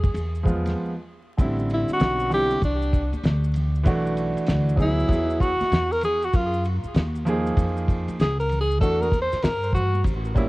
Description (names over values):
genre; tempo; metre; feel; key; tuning
hip hop, jazz-hop; 97 BPM; 4/4; swing 63% on 16ths; unclear; A4 = 440 Hz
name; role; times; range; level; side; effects
breathy alto saxophone; melody; 0.0-10.0 s; D4 to C5; -25 LUFS; equal; cassette tape, tape echo
upright bass; bass; 0.0-10.5 s; A1 to G2; -25 LUFS; equal; none
cloth-damped thuddy drum kit; drums; 0.0-10.5 s; hi-hat, kick drum, ride cymbal, snare drum; -22 LUFS; equal; cassette tape
congas and maracas; percussion; 0.0-10.5 s; none; -38 LUFS; left 1 dB; none
warm upright piano; accompaniment; 0.4-10.5 s; D3 to G#4; -25 LUFS; right 2 dB; none
room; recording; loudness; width
light reverb; home recording on cassette, vinyl crackle; -20 LUFS; side -21 dB against mid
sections
0.0-1.4 A section; 1.4-10.5 B section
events
break 0.8-1.4; alto saxophone solo 1.4-10.5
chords
0.0 E(b9); 1.4 Am11; 3.9 Bm7; 5.1 Eadd9; 6.3 F#maj9; 8.8 Em9b5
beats
0.15 0.77 | 1.39 2.01 2.62 3.24 | 3.86 4.48 5.10 5.72 | 6.34 6.95 7.57 8.19 | 8.81 9.43 10.05